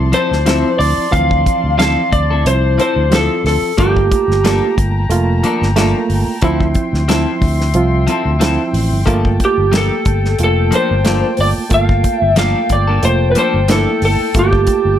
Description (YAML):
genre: straight-eighth soul blues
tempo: 91 BPM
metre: 4/4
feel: swing 54% on 16ths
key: unclear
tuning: A4 = 440 Hz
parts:
  - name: reed electric piano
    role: accompaniment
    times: 0.0-14.9 s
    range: E3 to G4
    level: -19 LUFS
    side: right 4 dB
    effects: fast tremolo
  - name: clear horn section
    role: sustained chords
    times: 0.0-15.0 s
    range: D5 to C6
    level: -26 LUFS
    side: left 2 dB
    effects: none
  - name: fingered electric bass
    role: bass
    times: 0.0-15.0 s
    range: F1 to D2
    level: -16 LUFS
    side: equal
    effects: none
  - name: electric slide guitar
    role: melody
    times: 0.1-4.7, 9.4-15.0 s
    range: G4 to F5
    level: -15 LUFS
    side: equal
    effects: none
  - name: clean electric guitar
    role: stabs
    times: 0.1-13.9 s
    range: F3 to A4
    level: -20 LUFS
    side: left 4 dB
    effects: lush chorus
  - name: damped 70s drum kit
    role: drums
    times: 0.1-14.8 s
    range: hi-hat, kick drum, snare drum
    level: -18 LUFS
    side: equal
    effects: none
room: light reverb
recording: none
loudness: -12 LUFS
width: side -10 dB against mid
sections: 0.0-15.0 A section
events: none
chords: 0.0 Dm9; 3.8 Gm9; 6.4 Dm9; 9.1 Gm9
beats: 0.47 | 1.13 1.79 2.46 3.12 | 3.78 4.44 5.11 5.77 | 6.43 7.09 7.75 8.41 | 9.07 9.73 10.39 11.06 | 11.72 12.38 13.04 13.70 | 14.36